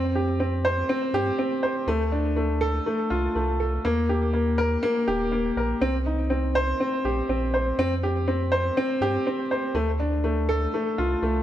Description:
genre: piano and strings electronica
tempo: 122 BPM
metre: 4/4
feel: straight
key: unclear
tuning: A4 = 443 Hz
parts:
  - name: warm upright piano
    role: riff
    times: 0.0-11.4 s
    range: A3 to C5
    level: -24 LUFS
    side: equal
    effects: tape echo
  - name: warm sub bass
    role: bass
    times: 0.0-11.4 s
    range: Eb1 to G2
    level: -27 LUFS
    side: right 1 dB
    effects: none
room: moderate concert hall reverb, RT60 1.9 s, small room ambience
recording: none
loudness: -22 LUFS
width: side -12 dB against mid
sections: 0.0-11.4 A section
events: none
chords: 0.0 Fsus2; 1.9 Dm; 3.8 Eb; 5.8 Cm; 7.8 Fsus2; 9.7 Dm

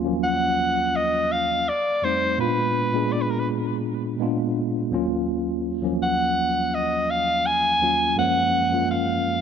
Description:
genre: R&B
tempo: 83 BPM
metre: 4/4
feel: straight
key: Eb minor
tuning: A4 = 440 Hz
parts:
  - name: mellow tine electric piano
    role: accompaniment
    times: 0.0-9.4 s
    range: Eb2 to Ab4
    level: -24 LUFS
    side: equal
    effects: medium stereo tremolo
  - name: breathy soprano saxophone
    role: melody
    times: 0.2-9.4 s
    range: Bb4 to Ab5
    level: -22 LUFS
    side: equal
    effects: ping-pong delay
room: light reverb, studio ambience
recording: none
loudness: -20 LUFS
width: side -7 dB against mid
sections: 0.0-9.4 A section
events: none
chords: 0.0 Ebm9; 1.7 F7; 2.4 Bb7b9; 4.9 Ebm9; 8.2 Gbmaj9

